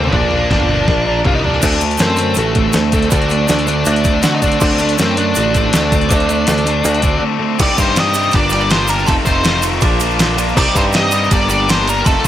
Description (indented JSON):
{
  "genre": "indie rock",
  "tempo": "161 BPM",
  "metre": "4/4",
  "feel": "straight",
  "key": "unclear",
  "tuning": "A4 = 441 Hz",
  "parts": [
    { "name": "octave-fuzz lead guitar", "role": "melody", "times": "0.0-12.3 s", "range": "A3 to Eb5", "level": "-18 LUFS", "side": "equal", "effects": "distortion, analog delay" },
    { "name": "string machine, violas", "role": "sustained chords", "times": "0.0-12.3 s", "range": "D4 to Bb5", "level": "-31 LUFS", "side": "right 1 dB", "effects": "none" },
    { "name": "biting overdriven guitar", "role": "riff", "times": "0.0-12.3 s", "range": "F2 to Bb4", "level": "-21 LUFS", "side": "right 6 dB", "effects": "analog chorus, analog delay" },
    { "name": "overdriven semi-hollow guitar", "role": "riff", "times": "0.0-12.3 s", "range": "F2 to F#4", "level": "-20 LUFS", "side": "left 10 dB", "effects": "none" },
    { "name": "picked electric bass", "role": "bass", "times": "0.0-12.3 s", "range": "F1 to D3", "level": "-19 LUFS", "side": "equal", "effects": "none" },
    { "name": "detuned 8-bit digital drum machine", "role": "drums", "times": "0.0-12.3 s", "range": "crash cymbal, hi-hat, kick drum, ride cymbal, snare drum, toms", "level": "-17 LUFS", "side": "equal", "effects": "none" },
    { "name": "glockenspiel with brass mallets", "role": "second line", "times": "1.5-12.3 s", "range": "G5 to D6", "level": "-28 LUFS", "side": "right 6 dB", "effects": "none" },
    { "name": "tube shaker", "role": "percussion", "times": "1.6-12.3 s", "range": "none", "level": "-28 LUFS", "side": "right 12 dB", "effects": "none" }
  ],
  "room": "little or no reverb",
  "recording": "none",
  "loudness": "-12 LUFS",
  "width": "side -12 dB against mid",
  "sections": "0.0-1.6 A section; 1.6-7.6 B section; 7.6-12.3 C section",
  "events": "drum fill 0.9-1.6; break 7.2-7.6",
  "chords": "0.1 Bb; 1.6 D7; 7.6 Cm7; 8.3 Gm7; 9.1 F7; 9.8 Bb; 10.6 Cm7; 11.3 Gm7"
}